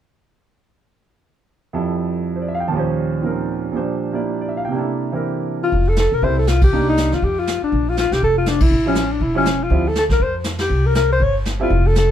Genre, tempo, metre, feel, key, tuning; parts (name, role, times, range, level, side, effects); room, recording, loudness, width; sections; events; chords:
jazz, small-group swing and bop; 241 BPM; 4/4; swing 59% on 8ths; F major; A4 = 439 Hz
clear concert grand piano; accompaniment; 1.7-11.7 s; Eb2 to A5; -21 LUFS; right 4 dB
breathy alto saxophone; melody; 5.6-12.1 s; C#4 to Db5; -18 LUFS; left 3 dB; plate reverb
upright bass; bass; 5.7-12.1 s; E1 to F2; -19 LUFS; equal
vintage brush drum kit; drums; 5.7-12.1 s; brushed snare drum, hi-hat, kick drum, ride cymbal, snare drum; -21 LUFS; equal
moderate small room reverb, RT60 0.5 s; heard from further back in the room; -16 LUFS; side -10 dB against mid
1.7-5.7 A section; 5.7-12.1 B section
band accent 6.6, 8.6, 10.6
1.7 Fmaj9; 2.7 Eb13; 3.7 Bb69; 4.7 C13; 5.7 Fmaj7; 6.7 Cm9; 7.2 Dmadd11/F (rootless); 7.7 Bb5; 8.7 A7b13; 9.7 Dm11; 10.7 C5